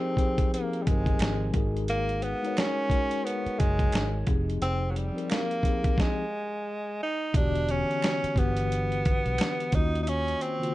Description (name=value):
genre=lo-fi hip hop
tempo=88 BPM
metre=4/4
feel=swing 59% on 16ths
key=unclear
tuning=A4 = 440 Hz
part: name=breathy tenor saxophone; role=melody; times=0.0-10.7 s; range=Gb3 to Eb4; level=-30 LUFS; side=right 1 dB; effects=low-pass filter, analog delay
part: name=mellow tine electric piano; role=accompaniment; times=0.0-10.7 s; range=Db3 to Db5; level=-32 LUFS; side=left 3 dB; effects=medium stereo tremolo, low-pass filter
part: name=dusty soul sampler-style drum kit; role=drums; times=0.2-10.7 s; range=hi-hat, kick drum, snare drum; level=-27 LUFS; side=equal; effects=none
part: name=vintage muted fingered electric bass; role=bass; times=0.9-10.3 s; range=E1 to Eb2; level=-30 LUFS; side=equal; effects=none
part: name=finger snaps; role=percussion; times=1.2-9.6 s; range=none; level=-43 LUFS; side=right 8 dB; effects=none
room=light reverb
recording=nothing above 10.8 kHz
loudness=-25 LUFS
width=side -16 dB against mid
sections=0.0-7.3 A section; 7.3-10.7 B section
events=stop 6.0-7.3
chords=0.0 Fm9; 1.5 Absus2; 4.3 Fm9; 7.3 Em9; 9.7 Ebm9